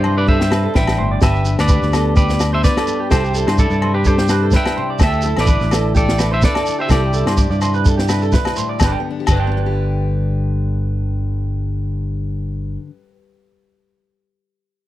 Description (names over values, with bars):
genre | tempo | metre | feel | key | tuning
highlife guitar band | 127 BPM | 4/4 | swing 54% on 16ths | G major | A4 = 440 Hz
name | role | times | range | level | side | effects
clean electric guitar | melody | 0.0-8.3 s | E4 to G5 | -22 LUFS | equal | none
picked steel-string acoustic guitar | accompaniment | 0.0-13.2 s | G2 to B4 | -25 LUFS | left 7 dB | none
electric guitar through a small old amp | arpeggios | 0.0-12.9 s | G4 to G5 | -24 LUFS | right 7 dB | slapback echo
fingered electric bass | bass | 0.0-12.8 s | G1 to G2 | -18 LUFS | equal | none
agogo bells | percussion | 0.0-9.4 s | none | -27 LUFS | left 6 dB | none
compact cocktail drum kit | drums | 0.3-9.4 s | crash cymbal, kick drum, snare drum | -17 LUFS | equal | none
shekere | percussion | 1.2-9.4 s | none | -24 LUFS | right 2 dB | none
room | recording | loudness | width
little or no reverb | dry, close 1970s-style studio recording | -14 LUFS | side -14 dB against mid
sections
0.0-8.8 A section; 8.8-12.6 B section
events
none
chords
0.0 Cadd9; 1.2 G; 3.1 Cadd9; 5.0 Dsus2; 6.9 Cadd9; 8.8 G